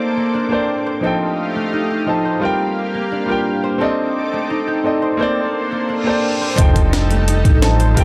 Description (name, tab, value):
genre	liquid drum and bass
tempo	173 BPM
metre	4/4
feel	swing 53% on 16ths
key	unclear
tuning	A4 = 440 Hz
part	warm concert grand piano	accompaniment	0.0-8.0 s	F3 to A5	-22 LUFS	equal	tape echo
part	lush unison pad	sustained chords	0.0-8.0 s	G3 to D6	-26 LUFS	equal	chorus
part	concert harp	arpeggios	0.0-8.0 s	A3 to C5	-25 LUFS	equal	tape echo
part	reverse cymbal and sub drop	sound effects	6.0-8.0 s	none	-29 LUFS	equal	none
part	sub bass with octave	bass	6.6-8.0 s	F1 to A1	-18 LUFS	equal	none
part	electronic kick drum	drums	6.6-8.0 s	none	-16 LUFS	equal	studio ambience
part	jungle sampler-style drum kit	drums	6.6-8.0 s	hi-hat, snare drum	-24 LUFS	equal	studio ambience
room	light reverb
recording	dark, warm production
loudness	-18 LUFS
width	mono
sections	0.0-6.6 A section; 6.6-8.0 B section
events	reverse cymbal 6.0-6.6; drop 6.6-8.0; impact 6.6-8.0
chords	0.0 Bbmaj9; 1.0 F9; 2.4 Gm7; 3.8 Cm69; 6.6 F9